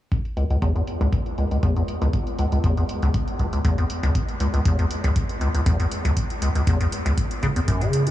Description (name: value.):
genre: acid house.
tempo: 119 BPM.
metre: 4/4.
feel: swing 53% on 16ths.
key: C# minor pentatonic.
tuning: A4 = 440 Hz.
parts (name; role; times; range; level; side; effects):
electronic hi-hat; drums; 0.1-8.1 s; none; -38 LUFS; right 2 dB; overdrive, low-pass filter on hats, low-pass filter on room.
electronic kick drum; drums; 0.1-7.8 s; none; -25 LUFS; equal; overdrive.
liquid acid bass; riff; 0.4-8.1 s; C#2 to C#3; -21 LUFS; equal; chorus, tube saturation, cassette tape, sidechain pumping, tape echo.
room: moderate huge ambient reverb, RT60 6.3 s.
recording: small room ambience.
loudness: -20 LUFS.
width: side -14 dB against mid.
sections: 0.1-8.1 A section.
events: filter sweep on acid bass 0.1-8.1.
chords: none.